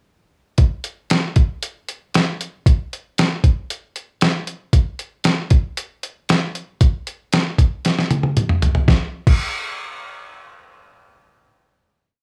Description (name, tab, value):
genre	rock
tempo	116 BPM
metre	4/4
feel	straight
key	none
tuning	none
part	boom bap sampler-style drum kit	drums	0.6-9.4 s	crash cymbal, hi-hat, kick drum, snare drum, toms	-18 LUFS	equal	none
room	moderate studio reverb, RT60 0.6 s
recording	small room ambience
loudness	-19 LUFS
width	mono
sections	0.6-8.9 verse; 8.9-11.0 final hit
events	drum fill 7.8-8.9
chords	none